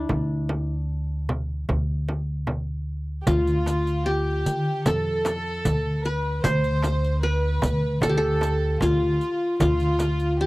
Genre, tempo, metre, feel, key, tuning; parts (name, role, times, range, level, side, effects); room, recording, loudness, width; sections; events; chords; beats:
Turkish makam ensemble; 76 BPM; 4/4; straight; D makam huseyni; A4 = 441 Hz
qanun; melody; 0.0-10.5 s; D4 to C5; -26 LUFS; equal
upright bass; bass; 0.0-10.5 s; D2 to D3; -25 LUFS; equal; transformer saturation
frame drum; percussion; 0.1-10.2 s; -29 LUFS; right 1 dB
warm studio violin section; second line; 3.2-10.5 s; F4 to C5; -30 LUFS; equal
darbuka; percussion; 3.3-10.5 s; -30 LUFS; equal
riq; percussion; 3.3-10.3 s; -36 LUFS; equal
little or no reverb; dry, gritty hardware recording; -22 LUFS; side -20 dB against mid
0.0-3.3 A section; 3.3-10.5 B section
| 0.10 0.89 1.69 2.48 | 3.27 4.06 4.85 5.64 | 6.44 7.23 8.02 8.81 | 9.60 10.39